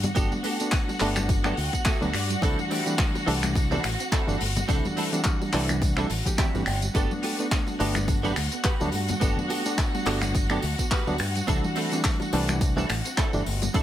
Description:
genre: nu-disco, nu disco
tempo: 106 BPM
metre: 4/4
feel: swing 56% on 16ths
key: G major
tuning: A4 = 439 Hz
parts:
  - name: rich studio string section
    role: sustained chords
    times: 0.0-13.8 s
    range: F#4 to F#5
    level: -34 LUFS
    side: left 1 dB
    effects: sidechain pumping
  - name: soft round pluck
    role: arpeggios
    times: 0.0-13.8 s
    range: E3 to C4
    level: -37 LUFS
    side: right 4 dB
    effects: none
  - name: fingered electric bass with an envelope filter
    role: bass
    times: 0.0-13.8 s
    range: G1 to G2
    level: -29 LUFS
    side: equal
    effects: sidechain pumping
  - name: damped 70s drum kit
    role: drums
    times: 0.0-13.8 s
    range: finger snaps, handclaps, hi-hat, tambourine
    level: -31 LUFS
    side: left 1 dB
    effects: none
  - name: congas, tambourine and bongos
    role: percussion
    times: 0.0-13.8 s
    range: none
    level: -37 LUFS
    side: left 3 dB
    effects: none
  - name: direct-recorded clean electric guitar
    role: riff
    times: 0.1-13.8 s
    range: B3 to G5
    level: -33 LUFS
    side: right 4 dB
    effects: ensemble chorus, tape echo
  - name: reed electric piano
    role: accompaniment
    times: 0.2-13.8 s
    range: E3 to G4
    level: -30 LUFS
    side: equal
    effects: fast tremolo, sidechain pumping, tape echo
  - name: electronic kick drum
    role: drums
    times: 0.2-13.8 s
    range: none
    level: -25 LUFS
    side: equal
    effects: overdrive
room: small room ambience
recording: none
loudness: -23 LUFS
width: side -12 dB against mid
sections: 0.0-13.8 A section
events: clean electric guitar fill 1.3-2.4, 6.1-7.0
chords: 0.0 Gmaj9; 2.4 C69; 7.0 Gmaj9; 11.5 C69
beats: | 0.16 0.72 1.29 1.86 | 2.42 2.99 3.56 4.12 | 4.69 5.25 5.82 6.38 | 6.95 7.52 8.08 8.65 | 9.21 9.78 10.35 10.91 | 11.48 12.04 12.61 13.18 | 13.74

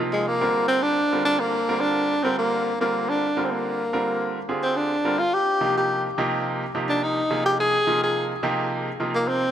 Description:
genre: jazz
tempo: 107 BPM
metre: 4/4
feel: straight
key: F dorian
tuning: A4 = 440 Hz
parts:
  - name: bright grand piano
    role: accompaniment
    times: 0.0-9.4 s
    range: C3 to Bb4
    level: -26 LUFS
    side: right 2 dB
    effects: none
  - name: breathy tenor saxophone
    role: melody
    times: 0.1-9.5 s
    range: Ab3 to Ab4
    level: -22 LUFS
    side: equal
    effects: none
room: moderate plate reverb, RT60 3.6 s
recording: bright 1980s-style digital production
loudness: -21 LUFS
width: side -10 dB against mid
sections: 0.0-9.5 A section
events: none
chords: 0.4 Bb; 5.2 F7sus2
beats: 0.13 | 0.69 1.25 1.82 2.38 | 2.94 3.50 4.07 4.63 | 5.19 5.76 6.32 6.88 | 7.45 8.01 8.57 9.14

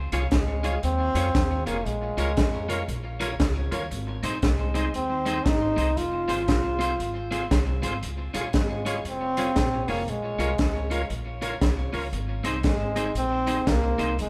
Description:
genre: ska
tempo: 117 BPM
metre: 4/4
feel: swing 62% on 8ths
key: Db major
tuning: A4 = 440 Hz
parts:
  - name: upright bass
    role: bass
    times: 0.0-14.3 s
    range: F1 to F2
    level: -32 LUFS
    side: equal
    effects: none
  - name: electric guitar at the edge of break-up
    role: accompaniment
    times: 0.1-14.1 s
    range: C4 to Db5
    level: -35 LUFS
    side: equal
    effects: tape echo
  - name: percussive tonewheel organ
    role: stabs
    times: 0.1-14.1 s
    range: Eb4 to Db5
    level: -38 LUFS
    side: equal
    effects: overdrive, fast rotary speaker
  - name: crunchy breakbeat drum kit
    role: drums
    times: 0.1-14.3 s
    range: hi-hat, kick drum, snare drum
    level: -29 LUFS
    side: equal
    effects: none
  - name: clear trombone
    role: melody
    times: 0.3-14.3 s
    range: Ab3 to F4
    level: -30 LUFS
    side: equal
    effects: none
room: moderate stone room reverb, RT60 1.1 s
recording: band playing live in one room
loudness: -26 LUFS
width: mono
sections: 0.0-14.3 A section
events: none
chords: 0.0 Db; 1.9 Bbm; 3.9 Ab; 6.0 Fm; 8.0 Db; 10.1 Bbm; 12.1 Ab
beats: 0.32 0.83 1.35 | 1.86 2.37 2.89 3.40 | 3.91 4.43 4.94 5.45 | 5.97 6.48 6.99 7.51 | 8.02 8.54 9.05 9.56 | 10.08 10.59 11.10 11.62 | 12.13 12.64 13.16 13.67 | 14.18

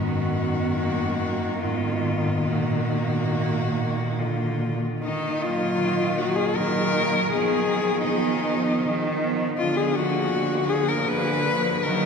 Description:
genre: classical, lyrical piece for cello ensemble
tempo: 69-82 BPM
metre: 3/4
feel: rubato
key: Eb minor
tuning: A4 = 440 Hz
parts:
  - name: warm cello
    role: melody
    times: 0.0-12.1 s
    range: Eb4 to Cb5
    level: -25 LUFS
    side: left 4 dB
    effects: none
  - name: dark cello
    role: second line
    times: 0.0-12.1 s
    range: Bb3 to Cb4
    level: -30 LUFS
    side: right 4 dB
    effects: none
  - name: rich cello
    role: bass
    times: 0.0-12.1 s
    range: Gb2 to Eb3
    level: -27 LUFS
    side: right 1 dB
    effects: none
  - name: rich cello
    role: accompaniment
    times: 0.1-12.1 s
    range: D3 to Gb3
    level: -29 LUFS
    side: equal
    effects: none
room: wet cathedral reverb, RT60 5.7 s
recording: recorded in a church or concert hall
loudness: -21 LUFS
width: side -6 dB against mid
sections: 0.0-5.0 A section; 5.0-12.1 B section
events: none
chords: 0.0 Ebm/Gb; 1.6 Fm7b5/Ab; 2.5 Ebm/Bb; 4.2 Bb; 5.0 Ebm; 7.3 Fm7b5/Eb; 9.6 Bb/D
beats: | 0.04 0.82 1.63 | 2.47 3.33 4.18 | 5.02 5.80 6.58 | 7.33 8.08 8.84 | 9.59 10.32 11.08 | 11.83

